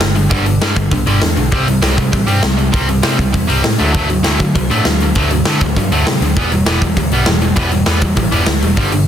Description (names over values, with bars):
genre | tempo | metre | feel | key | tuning
punk rock | 199 BPM | 4/4 | straight | unclear | A4 = 440 Hz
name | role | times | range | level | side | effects
distorted electric guitar | riff | 0.0-9.1 s | G2 to C4 | -16 LUFS | equal | overdrive
overdriven picked electric bass | bass | 0.0-9.0 s | E1 to D3 | -17 LUFS | equal | none
big rock drum kit | drums | 0.0-9.0 s | hi-hat, kick drum, snare drum | -16 LUFS | equal | soft clipping on kick
room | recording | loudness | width
little or no reverb | dense, heavily limited modern master | -11 LUFS | side -9 dB against mid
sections
0.0-9.1 A section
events
none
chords
0.0 G5; 1.5 C5; 3.8 D; 6.4 Em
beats
0.01 | 0.31 0.61 0.92 1.22 | 1.52 1.83 2.13 2.43 | 2.74 3.04 3.34 3.65 | 3.95 4.25 4.55 4.85 | 5.16 5.46 5.76 6.06 | 6.36 6.66 6.96 7.27 | 7.57 7.87 8.17 8.47 | 8.77